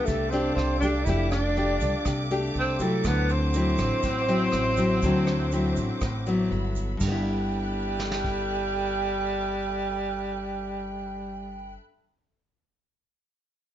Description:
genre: bossa nova.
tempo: 121 BPM.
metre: 4/4.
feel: straight.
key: G major.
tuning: A4 = 440 Hz.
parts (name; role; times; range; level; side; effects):
breathy tenor saxophone; melody; 0.0-11.7 s; G3 to E4; -29 LUFS; equal; none.
breathy silver concert flute; second line; 0.0-11.7 s; A4 to G5; -33 LUFS; right 3 dB; none.
nylon-string guitar; accompaniment; 0.0-11.9 s; G2 to G4; -28 LUFS; left 2 dB; none.
warm symphonic string section; sustained chords; 0.0-11.7 s; A4 to F#6; -38 LUFS; left 1 dB; none.
upright bass; bass; 0.1-11.8 s; F1 to D2; -30 LUFS; equal; none.
vintage brush drum kit; drums; 0.1-8.4 s; crash cymbal, hi-hat, kick drum, rim click, snare drum; -33 LUFS; right 1 dB; none.
tube shaker; percussion; 0.1-7.1 s; none; -46 LUFS; right 7 dB; none.
room: light reverb.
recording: nothing above 7.6 kHz.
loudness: -24 LUFS.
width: side -11 dB against mid.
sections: 0.0-7.0 A section; 7.0-11.0 B section.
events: none.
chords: 0.0 F69; 3.0 D9; 6.5 Gmaj13.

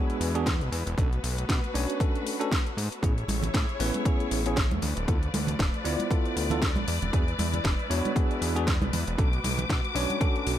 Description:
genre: nu-disco, nu disco.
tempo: 117 BPM.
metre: 4/4.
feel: swing 56% on 16ths.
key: unclear.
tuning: A4 = 444 Hz.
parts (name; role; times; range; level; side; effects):
bell-like tine electric piano; accompaniment; 0.0-10.6 s; B3 to D5; -32 LUFS; equal; medium stereo tremolo, sidechain pumping, ping-pong delay.
warm studio string section; sustained chords; 0.0-10.6 s; F3 to D6; -33 LUFS; left 2 dB; vintage 12-bit sampler grit, sidechain pumping.
house drum kit; drums; 0.1-10.6 s; hi-hat, snare drum; -33 LUFS; left 1 dB; overdrive.
fat analog bass; bass; 0.2-10.6 s; D1 to B2; -30 LUFS; equal; tube saturation.
electronic kick drum; drums; 0.5-10.3 s; none; -26 LUFS; equal; overdrive.
congas; percussion; 3.3-10.2 s; none; -34 LUFS; right 3 dB; none.
room: digital ambience.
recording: none.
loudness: -24 LUFS.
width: side -11 dB against mid.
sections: 0.0-10.6 A section.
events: none.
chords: 0.0 E7; 1.0 Bm7; 3.0 Amaj7; 4.8 Dm6; 6.9 E7; 9.2 Bm7.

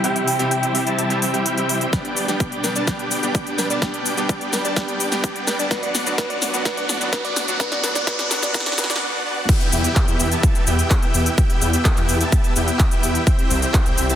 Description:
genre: EDM, festival progressive house.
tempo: 127 BPM.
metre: 4/4.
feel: straight.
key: E minor.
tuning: A4 = 440 Hz.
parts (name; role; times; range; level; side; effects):
bell-like FM electric piano; melody; 0.0-9.0 s; B4 to G5; -28 LUFS; right 1 dB; chorus, dub echo.
bright grand piano; accompaniment; 0.0-9.0 s; F#3 to G4; -28 LUFS; right 2 dB; sidechain pumping, dub echo.
rich studio string section; sustained chords; 0.0-9.0 s; D2 to E4; -29 LUFS; left 2 dB; sidechain pumping.
dense compressed supersaw; riff; 0.0-14.2 s; B3 to A5; -23 LUFS; equal; sidechain pumping, low-pass filter, dub echo.
big-room dance drum kit; drums; 0.0-14.2 s; crash cymbal, handclaps, hi-hat, shaker, snare drum; -24 LUFS; left 1 dB; overdrive.
electronic kick drum; drums; 1.9-13.8 s; none; -18 LUFS; equal; overdrive.
riser and downlifter; sound effects; 5.1-13.3 s; none; -30 LUFS; equal; none.
wide detuned saw bass; bass; 9.7-14.1 s; C2 to E2; -21 LUFS; equal; chorus, sidechain pumping.
room: light reverb.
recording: dense, heavily limited modern master, high-pass filter.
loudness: -17 LUFS.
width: side -10 dB against mid.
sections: 0.0-9.5 A section; 9.5-14.2 B section.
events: build-up 0.0-9.5; filter sweep on supersaw synth 0.0-9.5; filter sweep on string section 0.0-9.5; filter sweep 0.0-9.5; drum fill 1.9-9.0; riser 5.1-9.0; break 9.0-9.5; drop 9.5-14.2.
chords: 0.0 C; 1.9 G/B; 5.7 D; 9.5 Em; 13.3 C.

